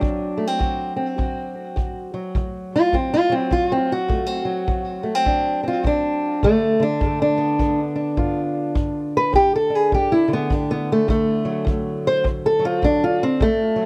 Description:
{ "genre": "acoustic country blues, solo or duo", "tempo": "103 BPM", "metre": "4/4", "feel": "swing 62% on 8ths", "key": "D mixolydian", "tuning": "A4 = 441 Hz", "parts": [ { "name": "fingerpicked old ladder-braced acoustic guitar", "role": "melody", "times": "0.0-13.9 s", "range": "D2 to C5", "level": "-21 LUFS", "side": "equal", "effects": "plate reverb, tape echo" }, { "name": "kick drum", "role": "drums", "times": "0.0-13.6 s", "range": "none", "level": "-26 LUFS", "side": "equal", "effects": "none" } ], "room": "moderate booth ambience, RT60 0.2 s", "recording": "none", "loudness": "-21 LUFS", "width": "mono", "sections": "0.0-13.9 A section", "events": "steel-string acoustic guitar solo 0.0-13.9", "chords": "0.0 D7; 6.4 G; 11.1 D" }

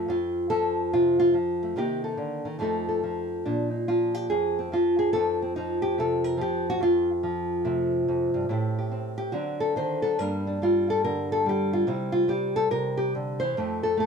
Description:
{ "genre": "solo jazz", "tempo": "143 BPM", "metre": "4/4", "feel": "swing 65% on 8ths, rubato", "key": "F mixolydian", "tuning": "A4 = 439 Hz", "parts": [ { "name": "nylon-string guitar", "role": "solo", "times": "0.0-14.1 s", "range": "F2 to C5", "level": "-23 LUFS", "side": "equal", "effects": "none" } ], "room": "moderate large studio reverb, RT60 0.9 s", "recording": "none", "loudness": "-23 LUFS", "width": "side -6 dB against mid", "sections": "0.0-14.1 A section", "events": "nylon-string guitar solo 0.0-14.1", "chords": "0.0 F; 1.7 Cm7; 2.6 F7; 3.5 Bb5; 5.2 F7; 8.5 Am7; 9.3 D7; 10.2 Gm; 11.9 C; 13.6 F7" }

